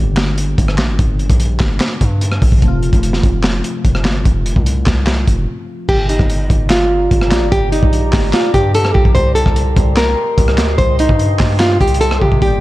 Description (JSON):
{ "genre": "hip hop, trap", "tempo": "147 BPM", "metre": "4/4", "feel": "half-time", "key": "G minor", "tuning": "A4 = 442 Hz", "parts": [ { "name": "glassy digital keys", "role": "accompaniment", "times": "0.0-5.9, 12.4-12.6 s", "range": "Bb2 to D5", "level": "-23 LUFS", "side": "left 1 dB", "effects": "chorus, low-pass filter" }, { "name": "distorted 808-style bass", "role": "bass", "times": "0.0-12.6 s", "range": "F1 to C3", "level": "-16 LUFS", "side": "equal", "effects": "distortion" }, { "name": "crunchy breakbeat drum kit", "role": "drums", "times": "0.2-12.5 s", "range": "crash cymbal, handclaps, hi-hat, kick drum, rim click, snare drum", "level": "-15 LUFS", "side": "equal", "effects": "none" }, { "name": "nylon-string guitar", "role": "melody", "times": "5.9-12.6 s", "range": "Eb4 to C5", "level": "-16 LUFS", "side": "equal", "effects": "low-pass filter, tape echo" }, { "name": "deep dark ambient pad", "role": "sustained chords", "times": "6.7-12.6 s", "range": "G4 to C6", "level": "-24 LUFS", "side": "right 2 dB", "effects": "chorus, built-in reverb" } ], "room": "small room ambience", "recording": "dark, warm production", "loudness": "-11 LUFS", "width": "side -17 dB against mid", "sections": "0.0-5.9 A section; 5.9-12.6 B section", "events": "break 5.5-5.9", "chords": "0.0 Gm; 2.6 F; 5.9 Gm; 9.2 Cm", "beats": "0.17 0.58 | 0.99 1.40 1.81 2.21 | 2.62 3.03 3.44 3.85 | 4.25 4.66 5.07 5.48 | 5.89 6.30 6.70 7.11 | 7.52 7.93 8.34 8.74 | 9.15 9.56 9.97 10.38 | 10.79 11.19 11.60 12.01 | 12.42" }